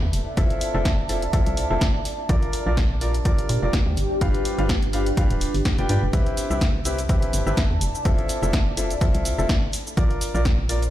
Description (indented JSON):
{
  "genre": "piano house",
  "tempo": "125 BPM",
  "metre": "4/4",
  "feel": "swing 55% on 16ths",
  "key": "unclear",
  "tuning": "A4 = 440 Hz",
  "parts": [
    { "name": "organ-like FM bass", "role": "bass", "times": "0.0-10.9 s", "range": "D1 to Bb2", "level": "-24 LUFS", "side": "equal", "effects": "sidechain pumping" },
    { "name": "deep dark ambient pad", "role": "texture", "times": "0.0-10.9 s", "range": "D4 to A5", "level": "-31 LUFS", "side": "right 1 dB", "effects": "chorus, built-in reverb, sidechain pumping" },
    { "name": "punchy analog drum machine", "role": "drums", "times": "0.1-10.9 s", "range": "hi-hat, shaker, snare drum", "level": "-30 LUFS", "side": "equal", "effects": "none" },
    { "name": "clear grand piano", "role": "riff", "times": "0.4-10.8 s", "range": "C4 to G5", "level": "-28 LUFS", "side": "left 1 dB", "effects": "sidechain pumping, low-pass filter, digital delay" },
    { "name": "electronic kick drum", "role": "drums", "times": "0.4-10.6 s", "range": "none", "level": "-22 LUFS", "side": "equal", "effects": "none" }
  ],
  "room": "digital ambience",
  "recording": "played on a big sound system in a bare room, large studio reverb",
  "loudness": "-20 LUFS",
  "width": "side -13 dB against mid",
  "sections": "0.0-10.9 A section",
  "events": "none",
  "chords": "0.1 Fmaj7; 2.1 Bb; 4.0 G7; 6.1 Cmaj7; 7.8 Fmaj7; 9.7 Bb"
}